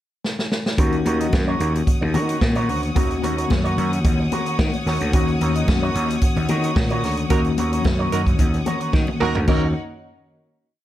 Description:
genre	disco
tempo	110 BPM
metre	4/4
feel	straight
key	Eb minor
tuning	A4 = 441 Hz
part	vintage drum kit	drums	0.2-9.6 s	crash cymbal, hi-hat, kick drum, snare drum, toms	-22 LUFS	equal	none
part	electric guitar with an envelope filter	accompaniment	0.8-9.7 s	Eb4 to Eb5	-28 LUFS	right 4 dB	none
part	mellow tine electric piano	accompaniment	0.8-9.7 s	Eb3 to Gb4	-25 LUFS	left 4 dB	medium stereo tremolo
part	clear studio string section	sustained chords	0.8-9.7 s	Eb4 to Eb6	-31 LUFS	left 2 dB	none
part	gritty slap bass	bass	0.8-9.7 s	D2 to Eb3	-23 LUFS	equal	overdrive
part	congas	percussion	0.8-9.7 s	none	-31 LUFS	left 4 dB	none
part	warm horn section	stabs	7.3-9.7 s	Gb3 to Bb4	-26 LUFS	right 7 dB	none
room	light reverb, studio reverb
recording	dark, warm production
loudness	-18 LUFS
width	side -13 dB against mid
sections	0.0-0.8 pickup bar; 0.8-9.5 groove; 9.5-10.8 final chord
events	drum fill 0.2-0.8, 8.9-9.5; band accent 7.3-9.5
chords	0.0 N.C.; 0.8 Ebm7

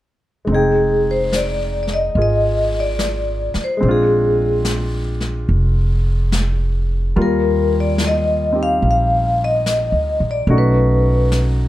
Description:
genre	jazz ballad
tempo	72 BPM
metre	4/4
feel	swing 66% on 8ths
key	F dorian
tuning	A4 = 440 Hz
part	warm concert grand piano	accompaniment	0.4-11.7 s	G3 to G5	-22 LUFS	equal	none
part	vibraphone with medium mallets	melody	0.5-11.3 s	Ab4 to F5	-18 LUFS	left 1 dB	none
part	upright bass	bass	0.5-11.7 s	F1 to Eb2	-18 LUFS	equal	none
part	jazz brush drum kit	drums	0.5-11.7 s	brushed snare drum, hi-hat, snare drum	-26 LUFS	left 2 dB	none
room	little or no reverb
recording	dark, warm production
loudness	-15 LUFS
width	side -15 dB against mid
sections	0.5-11.7 A section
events	none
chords	0.5 Fm9; 3.8 Bb7; 7.2 Ebadd9; 10.5 B9

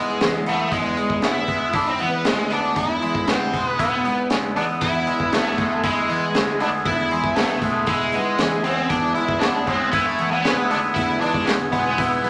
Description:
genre	psychedelic rock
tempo	117 BPM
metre	4/4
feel	straight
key	E major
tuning	A4 = 440 Hz
part	octave-fuzz lead guitar	melody	0.0-12.3 s	G#3 to E4	-25 LUFS	equal	wah, distortion
part	twangy electric guitar	riff	0.0-12.3 s	E2 to E4	-26 LUFS	equal	phaser
part	fuzz picked electric bass	bass	0.0-12.3 s	B1 to E3	-34 LUFS	equal	overdrive
part	crunchy breakbeat drum kit	drums	0.2-12.3 s	hi-hat, kick drum, snare drum	-28 LUFS	equal	none
part	overdriven combo organ	sustained chords	4.8-12.3 s	E4 to G#5	-31 LUFS	equal	none
room	wet large studio reverb, RT60 0.9 s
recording	none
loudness	-21 LUFS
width	mono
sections	0.0-12.3 A section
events	none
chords	0.0 E

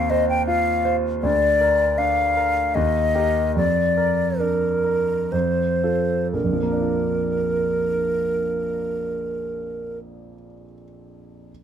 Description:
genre	classical, romantic duo for flute and grand piano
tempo	56-83 BPM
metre	3/4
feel	rubato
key	Bb major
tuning	A4 = 440 Hz
part	mellow hollow silver concert flute	melody	0.0-10.0 s	Bb4 to G5	-21 LUFS	left 2 dB	none
part	warm concert grand piano	accompaniment	0.0-11.5 s	Bb1 to C5	-24 LUFS	right 2 dB	none
room	light reverb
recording	none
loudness	-19 LUFS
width	side -8 dB against mid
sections	0.0-6.3 A section; 6.3-9.2 B section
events	slowing down 0.1-6.3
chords	0.0 F7(no3)/Eb; 1.2 Bb/D; 2.8 Eb; 3.6 Bb/F; 5.3 F; 6.3 Bb

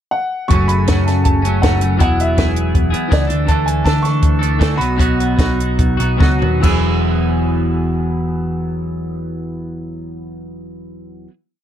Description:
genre	indie rock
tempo	138-162 BPM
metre	4/4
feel	straight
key	E major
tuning	A4 = 441 Hz
part	warm upright piano	melody	0.1-11.2 s	D5 to E6	-23 LUFS	equal	tape echo
part	clean electric guitar	riff	0.5-11.3 s	F#2 to A4	-19 LUFS	equal	double-tracked left and right
part	hollow-body short-scale picked electric bass	bass	0.5-11.3 s	E1 to D3	-18 LUFS	equal	none
part	compact cocktail drum kit	drums	0.5-6.7 s	crash cymbal, hi-hat, kick drum, snare drum, toms	-17 LUFS	equal	none
room	light reverb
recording	dark, warm production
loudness	-13 LUFS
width	side -10 dB against mid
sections	0.0-0.5 pickup bar; 0.5-6.6 pre-chorus; 6.6-10.1 final chord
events	slowing down 3.5-6.6; drum fill 6.2-6.6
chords	0.0 N.C.; 0.5 F#m; 2.0 Eadd9; 3.3 Dsus2; 4.8 B; 6.6 Eadd9

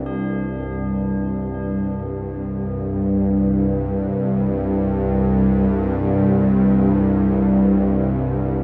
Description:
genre	dark ambient drone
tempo	free time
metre	none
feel	none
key	unclear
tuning	A4 = 440 Hz
part	bowed-like drone	drone	0.0-8.6 s	C2 to G2	-20 LUFS	equal	built-in reverb
part	tubular bells	arpeggios	0.1-8.6 s	D4	-44 LUFS	equal	delay
room	wet huge ambient reverb, RT60 6.9 s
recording	none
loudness	-20 LUFS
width	mono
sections	0.1-8.6 A section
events	fade-in on tubular bells 0.1-8.6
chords	0.1 Csus2

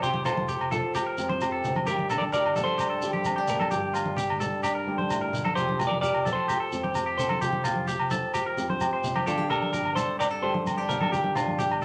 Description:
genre	highlife guitar band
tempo	130 BPM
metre	4/4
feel	straight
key	F major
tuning	A4 = 440 Hz
part	semi-hollow electric guitar	melody	0.0-11.8 s	D4 to D5	-32 LUFS	equal	none
part	flamenco guitar	accompaniment	0.0-11.8 s	F2 to G4	-33 LUFS	equal	none
part	clean electric guitar	arpeggios	0.0-11.8 s	F4 to C5	-34 LUFS	equal	none
part	fingered electric bass	bass	0.0-11.8 s	F1 to G2	-39 LUFS	equal	none
part	shekere	percussion	0.0-11.8 s	none	-42 LUFS	equal	none
part	congas	percussion	0.1-11.8 s	none	-36 LUFS	equal	none
part	agogo bells	percussion	0.3-11.8 s	none	-35 LUFS	equal	none
room	wet studio ambience, RT60 0.5 s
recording	lossy compression artefacts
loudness	-27 LUFS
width	mono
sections	0.0-11.8 A section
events	none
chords	0.0 Fsus2; 1.9 Gm; 5.6 Fsus2

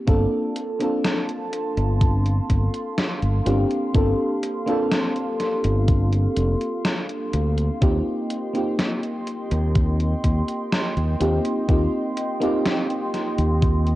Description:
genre	vaporwave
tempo	62 BPM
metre	4/4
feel	straight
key	G minor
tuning	A4 = 441 Hz
part	mellow FM electric piano	accompaniment	0.0-14.0 s	Bb3 to A4	-24 LUFS	equal	lush chorus, analog delay
part	warbly tape-like pad	sustained chords	0.7-14.0 s	Bb3 to C6	-31 LUFS	right 1 dB	chorus, built-in reverb, phaser
part	fingered electric bass	bass	0.1-14.0 s	F1 to Eb2	-21 LUFS	equal	tube saturation
part	electronic kick drum	drums	0.1-13.8 s	none	-20 LUFS	equal	overdrive
part	gated 80s digital drum machine	drums	0.1-14.0 s	hi-hat, snare drum	-27 LUFS	equal	gated reverb, gated reverb snare, overdrive
room	light reverb, digital ambience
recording	worn, warbling old tape, cassette tape, warbly pitch drift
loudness	-20 LUFS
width	side -16 dB against mid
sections	0.0-14.0 A section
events	none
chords	0.1 Gm11; 7.8 Eb6

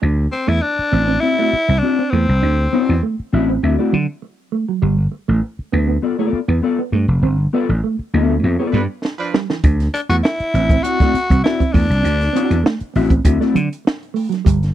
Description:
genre	funk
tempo	100 BPM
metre	4/4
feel	straight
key	unclear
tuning	A4 = 440 Hz
part	mellow electric guitar	riff	0.0-14.6 s	E3 to D4	-22 LUFS	right 7 dB	harmonic tremolo
part	vintage slap bass	bass	0.0-14.7 s	F1 to D3	-16 LUFS	equal	none
part	raspy tenor saxophone	melody	0.3-3.0, 9.9-12.6 s	C4 to F#4	-19 LUFS	left 2 dB	none
part	mellow electric guitar	accompaniment	1.2-13.6 s	B3 to E5	-19 LUFS	left 6 dB	analog chorus
part	warm horn section	second line	8.7-9.4 s	F3 to B4	-24 LUFS	right 4 dB	none
part	compact cocktail drum kit	drums	9.0-14.7 s	hi-hat, kick drum, snare drum	-16 LUFS	equal	none
room	small room ambience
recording	dry, close 1970s-style studio recording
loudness	-15 LUFS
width	side -12 dB against mid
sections	0.0-14.7 A section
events	band accent 7.2-9.6; drum fill 9.0-9.6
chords	0.0 D9; 4.8 G9; 9.6 D9

